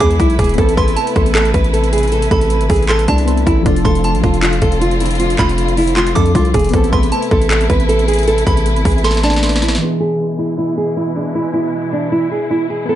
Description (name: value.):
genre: hip hop, trap.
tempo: 156 BPM.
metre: 4/4.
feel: half-time.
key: A harmonic minor.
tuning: A4 = 440 Hz.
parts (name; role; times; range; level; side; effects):
nylon-string guitar; melody; 0.0-13.0 s; D4 to B4; -17 LUFS; right 1 dB; low-pass filter, analog delay.
delicate synth tine bell; second line; 0.0-9.4 s; A5 to D6; -24 LUFS; right 4 dB; chorus, analog delay.
warbly lo-fi synth keys; accompaniment; 0.0-13.0 s; E3 to A4; -22 LUFS; left 3 dB; chorus, low-pass filter, analog delay.
warm symphonic string section; sustained chords; 0.0-13.0 s; B2 to B4; -23 LUFS; equal; low-pass filter.
distorted 808-style bass; bass; 0.0-9.8 s; E1 to F2; -16 LUFS; equal; distortion.
trap drum kit; drums; 0.0-9.8 s; handclaps, hi-hat, kick drum, snare drum; -18 LUFS; equal; overdrive.
room: light reverb, digital ambience.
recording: echo-heavy mix, nothing above 10.9 kHz.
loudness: -12 LUFS.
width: side -12 dB against mid.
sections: 0.0-9.8 A section; 9.8-13.0 B section.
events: drum fill 9.0-9.8; filter sweep 9.8-13.0.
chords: 0.0 E; 0.6 Amadd9; 3.7 F6; 6.7 Amadd9; 9.8 E.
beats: 0.20 | 0.58 0.97 1.35 1.74 | 2.12 2.50 2.89 3.27 | 3.66 4.04 4.43 4.81 | 5.20 5.58 5.97 6.35 | 6.74 7.12 7.50 7.89 | 8.27 8.66 9.04 9.43 | 9.81 10.20 10.58 10.97 | 11.35 11.74 12.12 12.51 | 12.89.